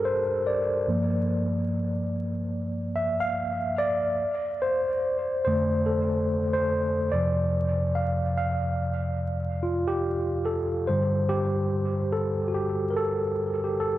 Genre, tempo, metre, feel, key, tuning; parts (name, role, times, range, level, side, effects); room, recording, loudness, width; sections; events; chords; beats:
hip hop; 72 BPM; 4/4; swing 60% on 16ths; A4 = 440 Hz
mellow tine electric piano; solo; 0.0-14.0 s; F2 to F5; -24 LUFS; equal; fast stereo tremolo, dub echo
moderate spring reverb, RT60 2.3 s; echo-heavy mix, vinyl crackle; -24 LUFS; side -14 dB against mid
0.0-14.0 A section
tine electric piano solo 0.0-14.0
0.0 Gmadd9; 0.9 Gm7; 4.2 F6; 7.1 Dm7/F; 10.9 Gmadd9
0.05 | 0.88 1.71 2.55 3.38 | 4.21 5.05 5.88 6.71 | 7.55 8.38 9.21 10.05 | 10.88 11.71 12.55 13.38